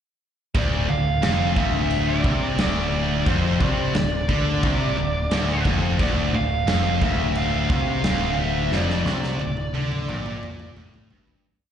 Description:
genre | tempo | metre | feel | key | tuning
heavy metal | 88 BPM | 4/4 | straight | D minor | A4 = 440 Hz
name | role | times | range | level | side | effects
growling picked electric bass | bass | 0.5-11.4 s | D1 to D2 | -26 LUFS | equal | overdrive
big rock drum kit | drums | 0.5-11.4 s | crash cymbal, kick drum, snare drum, toms | -26 LUFS | equal | none
high-gain lead guitar | melody | 0.6-10.7 s | C5 to F5 | -28 LUFS | right 2 dB | distortion, slapback echo, digital delay
distorted electric guitar | riff | 0.6-11.4 s | D2 to D3 | -27 LUFS | left 8 dB | distortion, slapback echo
heavy high-gain guitar | riff | 0.6-11.4 s | D2 to D3 | -28 LUFS | right 9 dB | distortion, slapback echo
heavy high-gain guitar | riff | 0.6-11.4 s | D2 to D3 | -32 LUFS | equal | distortion
room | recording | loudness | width
studio ambience | live gig heard through the venue's PA, recital hall reverb, nothing above 10.8 kHz | -20 LUFS | side -9 dB against mid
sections
0.5-11.4 riff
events
fade-out 8.7-11.4; drum fill 8.7-11.4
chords
0.5 Dm

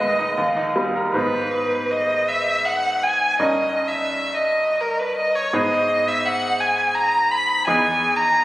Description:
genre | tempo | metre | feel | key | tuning
classical, romantic duo for violin and grand piano | 83 BPM | 3/4 | uneven beats, rubato | G# minor | A4 = 440 Hz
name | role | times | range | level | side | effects
warm violin | melody | 0.0-8.4 s | A#4 to B5 | -19 LUFS | equal | none
bright grand piano | accompaniment | 0.0-8.4 s | D#1 to B4 | -24 LUFS | right 1 dB | none
room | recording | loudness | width
wet concert hall reverb, RT60 2.5 s | recorded on a phone in the room, studio reverb, compression | -18 LUFS | side -16 dB against mid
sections
0.0-1.1 A section; 1.1-8.4 B section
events
none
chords
0.4 D#; 1.1 G#m; 3.4 D#7/G; 5.5 G#m; 7.7 Emaj7

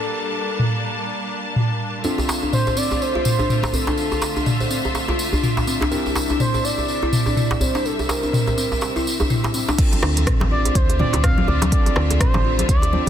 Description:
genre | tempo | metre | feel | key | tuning
afro house | 124 BPM | 4/4 | swing 59% on 16ths | D minor | A4 = 441 Hz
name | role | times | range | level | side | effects
expressive synth lead | melody | 0.0-13.1 s | A4 to F5 | -26 LUFS | equal | chorus, ping-pong delay
clear symphonic string section | sustained chords | 0.0-13.1 s | C3 to A5 | -28 LUFS | left 1 dB | sidechain pumping
tine electric piano | stabs | 0.0-13.1 s | Bb3 to A5 | -31 LUFS | right 4 dB | sidechain pumping, ping-pong delay
deep house drum kit | drums | 0.6-12.9 s | crash cymbal, hi-hat, rim click, toms | -23 LUFS | equal | low-pass filter on toms, low-pass filter on hats, low-pass filter on cymbals, soft clipping on snare, low-pass filter on snare, low-pass filter on room
kalimba | arpeggios | 2.0-13.1 s | C4 to D5 | -26 LUFS | left 2 dB | sidechain pumping, ping-pong delay
tambourine | percussion | 2.0-9.8 s | none | -29 LUFS | right 1 dB | none
djembe | percussion | 2.2-13.1 s | none | -26 LUFS | right 1 dB | none
electronic kick drum | drums | 9.8-13.1 s | none | -19 LUFS | equal | none
congas | percussion | 9.9-13.1 s | none | -27 LUFS | left 3 dB | none
woody FM bass | bass | 10.0-13.1 s | A1 to D2 | -21 LUFS | equal | sidechain pumping
room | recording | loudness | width
moderate lush hall reverb, RT60 2.0 s, studio ambience | dense, heavily limited modern master | -18 LUFS | side -10 dB against mid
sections
0.0-9.8 A section; 9.8-13.1 B section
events
filter sweep on tine electric piano 0.0-9.8; drop 9.8-13.1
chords
0.0 Gmadd9; 2.0 Dm7; 5.9 C7; 9.8 Dm7

